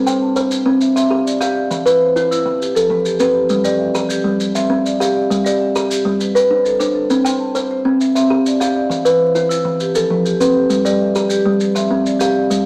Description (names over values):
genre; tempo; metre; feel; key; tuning
southern african traditional, mbira-style interlocking cycle; 133 BPM (dotted quarters); 12/8; straight; unclear; A4 = 444 Hz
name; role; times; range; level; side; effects
kalimba; arpeggios; 0.0-12.7 s; E3 to G5; -17 LUFS; equal; none
marimba with medium mallets; arpeggios; 0.0-12.7 s; E3 to A5; -23 LUFS; equal; none
maracas; percussion; 0.1-12.6 s; none; -30 LUFS; equal; none
room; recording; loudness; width
moderate large studio reverb, RT60 1.1 s; vinyl crackle; -16 LUFS; mono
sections
0.0-12.5 A section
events
none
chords
0.0 C; 1.7 E5; 2.6 F; 3.5 G; 4.4 C; 5.3 G; 7.1 C; 8.9 E5; 9.8 F; 10.7 G; 11.6 C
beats
0.37 0.81 1.26 | 1.71 2.16 2.61 3.06 | 3.51 3.96 4.41 4.85 | 5.30 5.75 6.20 6.66 | 7.11 7.55 8.01 8.46 | 8.91 9.36 9.81 10.26 | 10.71 11.16 11.61 12.06 | 12.51